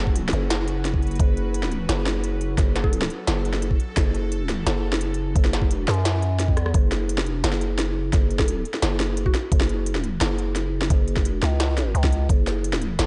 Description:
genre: half-time drum and bass.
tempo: 173 BPM.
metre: 4/4.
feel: half-time.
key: F# minor.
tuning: A4 = 440 Hz.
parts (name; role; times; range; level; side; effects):
bowed-like drone; sustained chords; 0.0-6.8 s; F#3 to B4; -40 LUFS; equal; built-in reverb, sidechain pumping.
growling 808-style bass; bass; 0.0-13.1 s; F#1 to F#2; -26 LUFS; equal; none.
electronic kick drum; drums; 0.1-12.4 s; none; -23 LUFS; equal; overdrive.
industrial drum kit; drums; 0.2-13.1 s; hi-hat, rim click, snare drum; -30 LUFS; equal; none.
mallet-like synth pluck; melody; 2.8-3.2, 8.4-9.7 s; F#4 to A4; -35 LUFS; equal; chorus, delay.
room: little or no reverb.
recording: dark, warm production, nothing above 10.3 kHz.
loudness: -23 LUFS.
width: mono.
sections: 0.0-6.7 A section; 6.7-13.1 A section.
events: drop 0.0-6.7, 6.7-13.1; drum fill 6.6.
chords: 0.0 F#m; 6.7 F#5.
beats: 0.15 0.50 0.85 | 1.20 1.54 1.89 2.24 | 2.58 2.93 3.28 3.62 | 3.97 4.32 4.66 5.01 | 5.36 5.70 6.05 6.40 | 6.74 7.09 7.44 7.79 | 8.13 8.48 8.82 9.17 | 9.52 9.87 10.21 10.56 | 10.91 11.25 11.60 11.95 | 12.29 12.64 12.99.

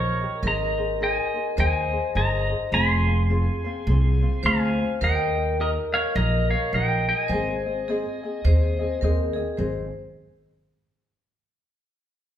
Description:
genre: Hawaiian.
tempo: 105 BPM.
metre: 4/4.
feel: swing 59% on 8ths.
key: Ab major.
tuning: A4 = 440 Hz.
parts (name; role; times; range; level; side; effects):
pedal steel guitar; melody; 0.0-9.0 s; Bb4 to C6; -25 LUFS; equal; none.
vibraphone with hard mallets; second line; 0.0-9.9 s; Ab4 to C5; -30 LUFS; left 2 dB; none.
ukulele; accompaniment; 0.0-9.9 s; C4 to Eb5; -32 LUFS; left 3 dB; none.
upright bass; bass; 0.0-9.9 s; F1 to Eb2; -23 LUFS; equal; none.
room: wet large studio reverb, RT60 1.2 s.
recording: band playing live in one room.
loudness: -21 LUFS.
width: side -10 dB against mid.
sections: 0.0-9.6 A section; 9.6-11.9 B section.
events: none.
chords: 0.4 Abadd9; 2.7 Fm; 5.0 Eb; 7.3 Ab.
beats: | 0.43 1.01 1.58 2.15 | 2.73 3.30 3.87 4.44 | 5.02 5.59 6.16 6.73 | 7.30 7.88 8.45 9.02 | 9.59.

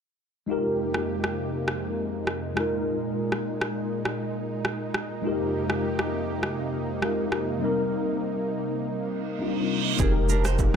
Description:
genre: afrobeats.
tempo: 101 BPM.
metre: 4/4.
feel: straight.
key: F minor.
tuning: A4 = 440 Hz.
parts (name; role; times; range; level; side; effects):
mellow tine electric piano; accompaniment; 0.5-10.8 s; G3 to Bb4; -28 LUFS; left 2 dB; ensemble chorus.
lush unison pad; sustained chords; 0.5-10.8 s; F2 to Bb4; -32 LUFS; right 2 dB; chorus.
deep house drum kit; drums; 0.9-10.7 s; kick drum, rim click, shaker; -29 LUFS; equal; none.
reverse cymbal; sound effects; 9.3-10.0 s; none; -32 LUFS; right 11 dB; none.
flamenco guitar; riff; 10.0-10.6 s; C4 to C5; -32 LUFS; right 9 dB; none.
saturated sub bass; bass; 10.0-10.8 s; F1; -24 LUFS; equal; none.
congas and bongos; percussion; 10.0-10.7 s; none; -35 LUFS; right 9 dB; none.
room: light reverb.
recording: none.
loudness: -25 LUFS.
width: side -7 dB against mid.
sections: 0.5-10.0 A section.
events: reverse cymbal 9.3-10.0.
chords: 0.5 Fm11; 2.6 Bb7sus4; 5.2 Fm11; 7.6 Cm7; 10.0 Fm11.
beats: | 0.49 1.08 1.68 2.27 | 2.87 3.46 4.05 4.65 | 5.24 5.84 6.43 7.02 | 7.62 8.21 8.81 9.40 | 9.99 10.59.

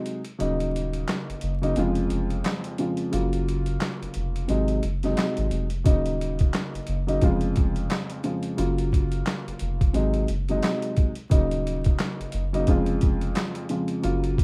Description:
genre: hip hop, boom-bap hip-hop.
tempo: 88 BPM.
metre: 4/4.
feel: swing 60% on 16ths.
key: unclear.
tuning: A4 = 440 Hz.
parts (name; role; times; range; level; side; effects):
dark baby grand piano; accompaniment; 0.0-14.4 s; F2 to F4; -29 LUFS; equal; cassette tape, high-pass filter, low-pass filter.
boom bap sampler-style drum kit; drums; 0.1-14.4 s; handclaps, hi-hat, kick drum, snare drum; -27 LUFS; equal; none.
soft dub sub bass; bass; 0.4-14.4 s; Eb1 to Ab1; -30 LUFS; equal; none.
room: little or no reverb.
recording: rough home demo mix, vinyl crackle.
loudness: -25 LUFS.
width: mono.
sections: 0.0-14.4 A section.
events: break 0.0-5.9.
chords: 0.4 Ebm7; 1.8 Db/F; 3.1 Gbmaj7; 4.5 Ab7; 5.9 Ebm7; 7.2 Db/F; 8.6 Gbmaj7; 9.9 Ab7; 11.3 Ebm7; 12.7 Db/F.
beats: | 0.40 1.08 1.77 2.45 | 3.13 3.81 4.49 5.18 | 5.86 6.54 7.22 7.90 | 8.59 9.27 9.95 10.63 | 11.31 11.99 12.68 13.36 | 14.04.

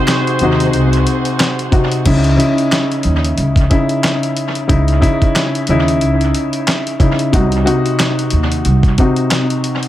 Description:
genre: hip hop, boom-bap hip-hop.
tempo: 91 BPM.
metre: 4/4.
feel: swing 59% on 16ths.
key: C# harmonic minor.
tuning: A4 = 440 Hz.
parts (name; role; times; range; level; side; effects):
dark baby grand piano; accompaniment; 0.0-9.9 s; B#2 to F#4; -15 LUFS; left 1 dB; high-pass filter, low-pass filter, dub echo.
bright studio string section; sustained chords; 0.0-2.0 s; B#4 to G#5; -27 LUFS; right 3 dB; high-pass filter, low-pass filter.
mellow horn section; stabs; 0.0-1.7 s; B#3 to B#4; -23 LUFS; right 2 dB; high-pass filter, low-pass filter, dub echo.
dusty soul sampler-style drum kit; drums; 0.1-9.9 s; crash cymbal, handclaps, hi-hat, kick drum, snare drum; -17 LUFS; equal; dub echo.
finger snaps; percussion; 0.1-1.6 s; none; barely audible; none; none.
upright bass; bass; 0.4-8.9 s; B#1 to D#2; -15 LUFS; equal; none.
room: light reverb, studio ambience.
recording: echo-heavy mix.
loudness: -12 LUFS.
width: side -13 dB against mid.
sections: 0.0-2.1 A section; 2.1-9.9 B section.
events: none.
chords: 0.0 G#7; 2.1 C#madd9; 7.3 Cdim.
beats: 0.08 0.74 1.40 | 2.06 2.71 3.37 4.03 | 4.69 5.35 6.01 6.67 | 7.33 7.99 8.65 9.31.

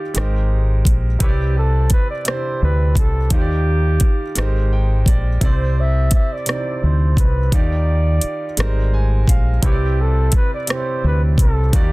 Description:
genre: slow six-eight R&B.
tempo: 57 BPM (dotted quarters).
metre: 6/8.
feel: straight.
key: unclear.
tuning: A4 = 441 Hz.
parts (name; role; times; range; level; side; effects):
mellow flugelhorn; melody; 0.0-11.9 s; G4 to E5; -25 LUFS; equal; plate reverb.
clear baby grand piano; accompaniment; 0.0-11.9 s; C3 to Ab5; -26 LUFS; right 3 dB; plate reverb.
smooth R&B drum kit; drums; 0.1-11.9 s; hi-hat, kick drum, rim click; -16 LUFS; equal; soft clipping on snare.
deep dub fingered electric bass; bass; 0.2-11.9 s; Ab1 to Eb2; -16 LUFS; equal; none.
room: little or no reverb.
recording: dense, heavily limited modern master.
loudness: -15 LUFS.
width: side -22 dB against mid.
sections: 0.0-11.9 A section.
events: grand piano fill 4.4-5.4, 8.6-9.6.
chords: 0.2 Abmaj9; 1.2 Cmaj9; 3.3 Ebmaj9; 4.4 Abmaj9; 5.4 Cadd9; 7.5 Ebmaj9; 8.6 Abmaj9; 9.6 Cmaj9.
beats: 0.15 | 1.21 2.26 | 3.31 4.36 | 5.42 6.47 | 7.52 8.57 | 9.63 10.68 | 11.73.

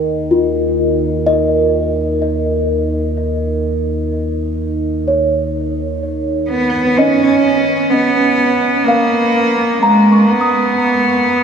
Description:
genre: ambient.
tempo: 63 BPM.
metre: 4/4.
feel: straight.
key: unclear.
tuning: A4 = 440 Hz.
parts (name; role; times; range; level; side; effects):
warm sub bass; bass; 0.0-6.9 s; Eb2; -22 LUFS; left 1 dB; tube saturation.
overtone-sweeping drone; drone; 0.0-7.1 s; Eb3; -19 LUFS; right 2 dB; chorus, built-in reverb.
small celesta; arpeggios; 0.3-11.4 s; F4 to Eb6; -18 LUFS; left 2 dB; tape echo.
rich cello; melody; 6.5-11.4 s; Ab3 to Db4; -11 LUFS; right 1 dB; tape echo.
room: wet huge ambient reverb, RT60 7.3 s.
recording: cassette tape, small room ambience.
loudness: -12 LUFS.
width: side -7 dB against mid.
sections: 0.0-7.0 A section; 7.0-11.4 A section.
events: none.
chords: 0.0 Ebsus2; 7.0 Abm69 (rootless).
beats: 0.32 1.27 2.22 | 3.17 4.12 5.08 6.03 | 6.98 7.93 8.89 9.84 | 10.79.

